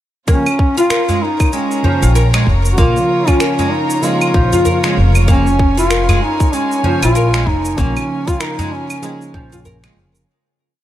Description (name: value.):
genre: organic downtempo.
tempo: 96 BPM.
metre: 4/4.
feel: swing 59% on 16ths.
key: Bb minor.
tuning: A4 = 441 Hz.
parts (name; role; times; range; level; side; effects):
mellow duduk; melody; 0.3-10.0 s; Db4 to Gb4; -18 LUFS; equal; digital delay.
tine electric piano; accompaniment; 0.3-10.3 s; Db3 to F4; -23 LUFS; right 2 dB; overdrive, sidechain pumping.
rich chamber string section; sustained chords; 0.3-10.2 s; F4 to Bb5; -27 LUFS; left 1 dB; sidechain pumping.
oud; arpeggios; 0.3-10.0 s; F3 to Bb4; -20 LUFS; left 1 dB; digital delay.
electronic kick drum; drums; 0.3-9.5 s; none; -14 LUFS; equal; none.
electronic shaker, claves and finger snaps; drums; 0.3-10.3 s; none; -23 LUFS; right 1 dB; none.
wind-like tuned noise texture; texture; 1.2-10.3 s; Db4 to Db5; -30 LUFS; right 1 dB; none.
udu; percussion; 1.1-9.8 s; none; -19 LUFS; equal; none.
upright bass; bass; 2.0-10.2 s; F1 to Bb1; -14 LUFS; equal; sidechain pumping.
room: light reverb, studio reverb.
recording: none.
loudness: -12 LUFS.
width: side -12 dB against mid.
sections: 0.3-10.3 groove.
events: fade-out 6.9-10.3.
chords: 0.3 Bbm.